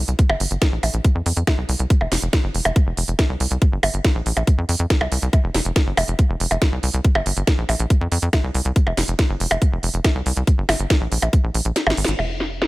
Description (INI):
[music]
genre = psychedelic trance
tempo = 140 BPM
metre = 4/4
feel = straight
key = F minor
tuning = A4 = 438 Hz
[part]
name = tight sequencer bass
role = bass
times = 0.0-12.7 s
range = F1 to F2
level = -22 LUFS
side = equal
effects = none
[part]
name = techno drum kit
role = drums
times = 0.1-12.7 s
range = crash cymbal, hi-hat, percussion blips, snare drum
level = -22 LUFS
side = equal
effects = low-pass filter on hats, low-pass filter on snare, low-pass filter on perc, low-pass filter on cymbals, low-pass filter on room
[part]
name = electronic kick drum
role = drums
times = 0.2-11.4 s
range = none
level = -16 LUFS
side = equal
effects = overdrive
[sound]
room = little or no reverb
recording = none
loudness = -17 LUFS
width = side -20 dB against mid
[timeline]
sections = 0.0-12.2 A section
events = drop 0.0-12.2; kick drops out 11.8-12.2; drum fill 11.8-12.2; band accent 12.0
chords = none